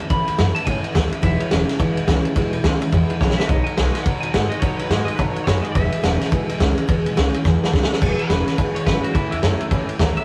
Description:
rockabilly; 212 BPM; 4/4; swing 62% on 8ths; E major; A4 = 439 Hz
clean electric guitar; melody; 0.0-10.2 s; E4 to B5; -31 LUFS; equal; analog delay
picked steel-string acoustic guitar; accompaniment; 0.0-10.2 s; E2 to G#4; -28 LUFS; equal
upright bass; bass; 0.0-10.2 s; E1 to B2; -25 LUFS; equal
vintage drum kit; drums; 0.0-10.2 s; crash cymbal, kick drum, ride cymbal, snare drum; -23 LUFS; equal
twangy electric guitar; riff; 1.2-10.2 s; E2 to G#3; -29 LUFS; equal
moderate studio reverb, RT60 0.6 s; rough rehearsal-room recording; -20 LUFS; mono
0.0-8.0 A section; 8.0-10.2 B section
drum fill 3.2, 7.4-8.0; clean electric guitar solo 8.0-10.2
0.0 A; 1.2 E; 3.5 B; 5.8 E; 9.1 A

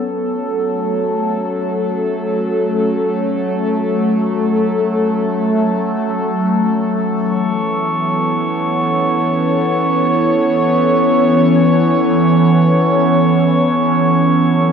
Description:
ambient; free time; A4 = 440 Hz
warbly tape-like pad; sustained chords; 0.0-14.7 s; E3 to Db5; -13 LUFS; equal; chorus, built-in reverb, phaser
glass harmonica; texture; 7.1-14.7 s; C#6; -20 LUFS; right 2 dB
wet cathedral reverb, RT60 5.3 s; dark, warm production; -13 LUFS; side -7 dB against mid
0.0-14.7 A section
0.0 Gbm; 7.2 Aadd9

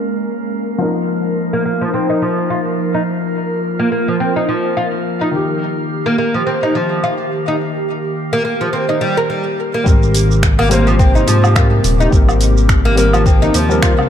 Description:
organic downtempo; 106 BPM; 4/4; swing 57% on 16ths; A4 = 440 Hz
felt-muted upright piano; accompaniment; 0.0-14.1 s; Eb3 to C5; -21 LUFS; left 3 dB; sidechain pumping, digital delay
airy breathy pad; sustained chords; 0.0-14.1 s; C3 to Bb4; -21 LUFS; equal; chorus, sidechain pumping
drifting glass-harmonics texture; texture; 0.0-9.9 s; Bb3 to Bb4; -26 LUFS; right 3 dB; chorus, built-in reverb
oud; arpeggios; 1.5-13.9 s; F3 to Bb4; -17 LUFS; equal; digital delay
smooth synth bass; bass; 9.9-14.1 s; Eb1 to Ab2; -14 LUFS; equal; sidechain pumping
deep house drum kit; drums; 9.9-14.1 s; finger snaps, hi-hat, shaker, woodblock; -20 LUFS; right 1 dB; low-pass filter on perc, low-pass filter on hats, low-pass filter on snare, low-pass filter on room
electronic kick drum; drums; 9.9-14.0 s; -13 LUFS; equal
light reverb, digital ambience; dark, warm production, low-pass filter; -13 LUFS; side -9 dB against mid
0.0-9.9 A section; 9.9-14.1 B section
filter sweep on felt piano 0.0-9.9; filter sweep on analog synth pad 0.0-9.9; filter sweep 0.0-9.9
0.0 Bbm7; 0.8 F7sus4; 5.3 Eb; 9.9 Abmaj9

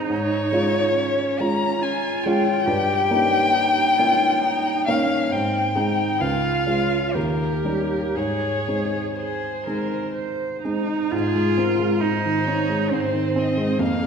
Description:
classical, slow romantic movement for piano trio; 58-71 BPM; 3/4; rubato; Ab major; A4 = 440 Hz
dark cello; second line; 0.0-14.1 s; Bb3 to C5; -25 LUFS; right 3 dB
warm baby grand piano; accompaniment; 0.0-14.1 s; Db2 to Ab4; -24 LUFS; equal
warm violin; melody; 0.1-14.1 s; Ab4 to Bb5; -23 LUFS; left 3 dB
wet scoring stage reverb, RT60 1.6 s; minimal, uncompressed stereo recording; -19 LUFS; side -6 dB against mid
0.0-11.1 A section; 11.1-14.1 A section
0.1 Db/Ab; 2.7 Eb7/G; 5.3 Ab; 6.2 Db; 7.2 Eb7; 8.2 Ab

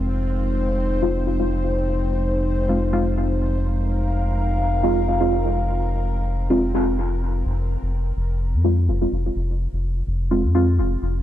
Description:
dub techno; 126 BPM; 4/4; swing 56% on 16ths; F minor; A4 = 440 Hz
dark analog pad; sustained chords; 0.0-7.4 s; Ab3 to F5; -26 LUFS; equal; chorus
round analog bass; bass; 0.0-11.2 s; F1 to F2; -22 LUFS; equal
bubbling stepped-filter texture; texture; 0.0-7.5 s; C4 to C5; -34 LUFS; left 1 dB; chorus, built-in reverb
deep mellow chord stab; stabs; 1.0-10.6 s; Ab3 to F4; -23 LUFS; equal; chorus, phaser, dub echo
light reverb, digital ambience; dry, gritty hardware recording, transformer saturation, cassette tape; -19 LUFS; side -12 dB against mid
0.0-7.5 A section; 7.5-11.2 B section
0.0 Fm

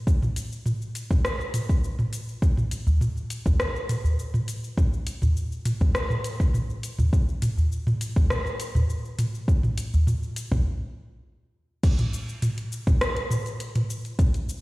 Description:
downtempo; 102 BPM; 4/4; straight
afro-pop drum kit; drums; 0.1-14.6 s; crash cymbal, hi-hat, rim click, shaker, toms; -27 LUFS; equal; small room reverb
electronic kick drum; drums; 0.1-14.3 s; -22 LUFS; equal; small room reverb
udu; percussion; 2.9-10.6 s; -25 LUFS; equal
light reverb; played on a big sound system in a bare room, stone room reverb; -23 LUFS; side -20 dB against mid
0.0-11.8 A section; 11.8-14.6 B section
stop 10.7-11.8

